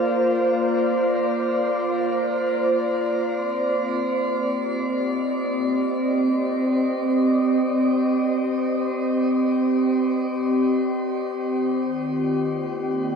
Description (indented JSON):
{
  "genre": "ambient",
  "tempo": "free time",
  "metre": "none",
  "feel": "none",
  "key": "C minor",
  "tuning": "A4 = 437 Hz",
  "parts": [
    { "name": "warbly tape-like pad", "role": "solo", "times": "0.0-13.2 s", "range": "Eb3 to Eb5", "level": "-20 LUFS", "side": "equal", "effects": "chorus, built-in reverb, ping-pong delay" }
  ],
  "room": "wet shimmer reverb, RT60 9.0 s",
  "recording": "none",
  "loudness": "-20 LUFS",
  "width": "side -6 dB against mid",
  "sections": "0.0-3.2 A section; 3.2-13.2 B section",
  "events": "none",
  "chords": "0.0 Bb; 3.2 Cm; 11.5 Eb",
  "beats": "free time"
}